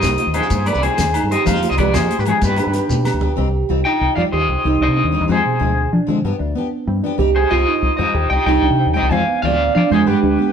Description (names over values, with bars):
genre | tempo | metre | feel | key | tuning
highlife guitar band | 126 BPM (dotted quarters) | 12/8 | straight | C harmonic minor | A4 = 440 Hz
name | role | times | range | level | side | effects
electric guitar at the edge of break-up | melody | 0.0-10.5 s | G4 to Ab5 | -18 LUFS | left 1 dB | harmonic tremolo
harp-like synth pluck | arpeggios | 0.0-10.5 s | B2 to B4 | -20 LUFS | right 6 dB | chorus
deep dub fingered electric bass | bass | 0.0-10.4 s | C2 to F3 | -20 LUFS | left 1 dB | none
damped 70s drum kit | drums | 0.0-3.3 s | hi-hat, kick drum, snare drum, toms | -25 LUFS | equal | none
congas | percussion | 0.0-3.3 s | none | -27 LUFS | left 2 dB | none
shekere | percussion | 0.0-3.1 s | none | -26 LUFS | left 3 dB | none
picked steel-string acoustic guitar | accompaniment | 0.3-10.5 s | F3 to Ab4 | -25 LUFS | left 6 dB | none
agogo bells | percussion | 0.3-3.2 s | none | -30 LUFS | left 1 dB | none
room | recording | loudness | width
moderate stone room reverb, RT60 1.1 s | band playing live in one room | -14 LUFS | side -7 dB against mid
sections
0.0-3.4 A section; 3.4-10.5 B section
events
drum fill 2.9-3.4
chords
0.0 Cm; 2.4 G; 3.4 Cm; 5.3 Fm; 6.2 G; 7.2 Cm; 9.1 Fm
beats
0.03 0.51 0.99 | 1.47 1.94 2.42 2.90 | 3.38 3.86 4.33 4.81 | 5.29 5.77 6.24 6.72 | 7.20 7.68 8.16 8.63 | 9.11 9.59 10.07